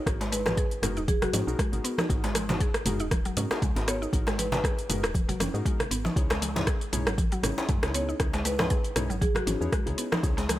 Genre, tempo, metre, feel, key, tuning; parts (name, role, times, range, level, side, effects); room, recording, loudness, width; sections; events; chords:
afro house; 118 BPM; 4/4; swing 55% on 16ths; G# minor; A4 = 440 Hz
warm analog keys; stabs; 0.0-10.4 s; B3 to C#5; -37 LUFS; left 3 dB; chorus, sidechain pumping, digital delay
woody FM bass; bass; 0.1-10.6 s; D#1 to G#2; -33 LUFS; equal; sidechain pumping
deep house drum kit; drums; 0.1-10.6 s; hi-hat, rim click, shaker, toms; -31 LUFS; equal; overdrive
electronic kick drum; drums; 0.1-10.3 s; -28 LUFS; equal; overdrive
djembe; percussion; 0.1-10.5 s; -36 LUFS; left 1 dB
mallet-like synth pluck; arpeggios; 0.2-10.6 s; F#3 to G#4; -34 LUFS; equal; chorus, sidechain pumping, digital delay
marimba with medium hard mallets; melody; 0.3-4.6, 7.9-9.9 s; F#4 to C#5; -34 LUFS; equal; digital delay
congas; percussion; 0.5-10.6 s; -34 LUFS; right 1 dB
little or no reverb; -25 LUFS; side -14 dB against mid
0.0-10.6 A section
0.0 G#m7; 6.2 C#madd9